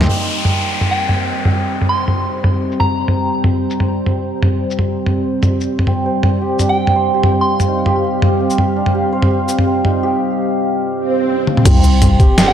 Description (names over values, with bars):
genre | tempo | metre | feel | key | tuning
half-time drum and bass | 166 BPM | 4/4 | swing 55% on 16ths, half-time | C minor | A4 = 439 Hz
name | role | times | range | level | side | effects
deep dark ambient pad | sustained chords | 0.0-12.5 s | G3 to G5 | -19 LUFS | equal | chorus, built-in reverb, sidechain pumping
santur | arpeggios | 0.0-12.5 s | Bb3 to C5 | -20 LUFS | right 2 dB | vintage 12-bit sampler grit, digital delay
growling 808-style bass | bass | 0.0-0.1, 11.7-12.2 s | C2 | -12 LUFS | equal | none
boom bap sampler-style drum kit | drums | 0.0-12.5 s | crash cymbal, hi-hat, shaker, snare drum, toms | -16 LUFS | equal | low-pass filter on hats, small room reverb, low-pass filter on toms, low-pass filter on snare, low-pass filter on perc, low-pass filter on cymbals
downlifter, swell and sub drop | sound effects | 0.1-3.0, 11.0-12.5 s | none | -20 LUFS | right 1 dB | none
soft synth bell | melody | 0.9-3.3, 6.7-7.8, 12.5 s | G5 to C6 | -22 LUFS | right 1 dB | chorus, tape echo
electronic kick drum | drums | 11.7-12.3 s | none | -11 LUFS | equal | small room reverb
room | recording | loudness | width
moderate lush hall reverb, RT60 2.2 s | dark, warm production | -13 LUFS | side -9 dB against mid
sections
0.1-11.7 A section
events
filter sweep on drum 0.1-11.7; swell 11.0-11.7; drum fill 11.5; impact 11.7-12.5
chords
0.1 C5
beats
| 0.09 0.45 0.81 1.17 | 1.53 1.90 2.26 2.62 | 2.98 3.34 3.70 4.07 | 4.43 4.79 5.15 5.51 | 5.87 6.23 6.59 6.96 | 7.32 7.68 8.04 8.40 | 8.76 9.12 9.49 9.85 | 10.21 10.57 10.93 11.29 | 11.65 12.02 12.38